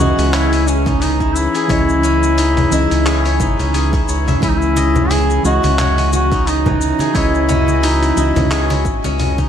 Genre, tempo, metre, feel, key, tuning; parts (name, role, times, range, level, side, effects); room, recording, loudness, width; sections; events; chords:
organic downtempo; 88 BPM; 4/4; swing 56% on 16ths; C# minor; A4 = 440 Hz
clear duduk; melody; 0.0-9.2 s; C#4 to G#4; -18 LUFS; left 1 dB; digital delay
deep mellow chord stab; accompaniment; 0.0-9.5 s; E3 to D#5; -23 LUFS; right 3 dB; chorus, sidechain pumping, digital delay
bowed-like drone; sustained chords; 0.0-9.5 s; E3 to D#5; -23 LUFS; right 1 dB; built-in reverb, sidechain pumping
steel-string zither; arpeggios; 0.0-9.5 s; E3 to E5; -22 LUFS; left 3 dB; digital delay
round analog bass; bass; 0.0-9.5 s; G#1 to C#2; -17 LUFS; equal; sidechain pumping
dusty soul sampler-style drum kit; drums; 0.0-9.5 s; congas, handclaps, hi-hat, shaker; -22 LUFS; left 2 dB
electronic kick drum; drums; 0.9-9.5 s; -20 LUFS; equal
congas; percussion; 4.8-9.5 s; -24 LUFS; right 2 dB
light reverb; lossy compression artefacts; -12 LUFS; side -9 dB against mid
0.0-9.5 A section
fade-out 8.1-9.5
0.0 C#madd9